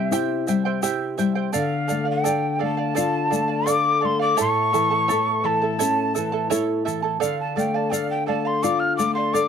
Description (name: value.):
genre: andean folk, Andean ensemble.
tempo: 85 BPM.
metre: 4/4.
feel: straight.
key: D minor.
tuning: A4 = 440 Hz.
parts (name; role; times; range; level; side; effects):
mellow quena; melody; 0.0-9.5 s; E5 to F6; -23 LUFS; left 2 dB; none.
charango; accompaniment; 0.0-9.5 s; E4 to A5; -25 LUFS; right 11 dB; none.
nylon-string guitar; accompaniment; 0.0-9.5 s; A2 to D5; -24 LUFS; left 6 dB; none.
tube shaker; percussion; 0.1-9.5 s; none; -32 LUFS; left 10 dB; none.
room: moderate small room reverb, RT60 0.5 s.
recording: dry, close 1970s-style studio recording.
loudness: -20 LUFS.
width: side -7 dB against mid.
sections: 0.0-9.5 A section.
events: none.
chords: 0.0 C; 1.5 Dm; 4.4 A; 7.2 Dm.